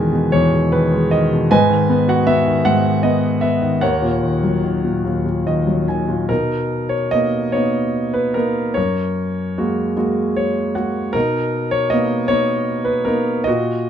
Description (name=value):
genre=classical, lyrical solo piano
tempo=48-53 BPM (dotted quarters)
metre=6/8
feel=rubato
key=B major from 6.3 s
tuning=A4 = 440 Hz
part: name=warm concert grand piano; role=solo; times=0.0-13.9 s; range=D#2 to G#5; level=-16 LUFS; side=equal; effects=none
room=moderate studio reverb, RT60 0.5 s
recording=minimal, uncompressed stereo recording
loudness=-15 LUFS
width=side -9 dB against mid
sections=0.0-6.3 A section; 6.3-13.9 B section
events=grand piano fill 5.1-6.3, 10.0-11.2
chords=0.0 Emaj7; 1.5 G#m7; 3.8 D#m7; 6.3 Bmaj7; 8.8 F#add9; 11.2 Bmaj7